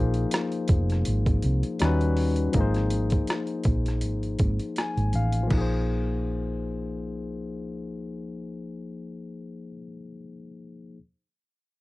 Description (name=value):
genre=R&B, neo-soul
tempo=81 BPM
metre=4/4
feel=swing 55% on 16ths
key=unclear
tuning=A4 = 441 Hz
part: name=barky tine electric piano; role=accompaniment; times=0.0-11.0 s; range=F3 to Ab5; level=-30 LUFS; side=left 3 dB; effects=overdrive
part: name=hollow-body short-scale fingered electric bass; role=bass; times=0.0-9.8 s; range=F1 to Eb2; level=-26 LUFS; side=equal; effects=none
part: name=boom bap sampler-style drum kit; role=drums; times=0.1-5.7 s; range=crash cymbal, hi-hat, kick drum, rim click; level=-26 LUFS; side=equal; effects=overdrive
room=little or no reverb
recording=dry, close 1970s-style studio recording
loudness=-24 LUFS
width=side -19 dB against mid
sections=0.0-5.5 A section; 5.5-8.5 B section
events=tine electric piano fill 4.4-5.5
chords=0.0 Bbsus2; 1.8 Eb7alt; 2.5 Ab69; 5.5 Bbsus2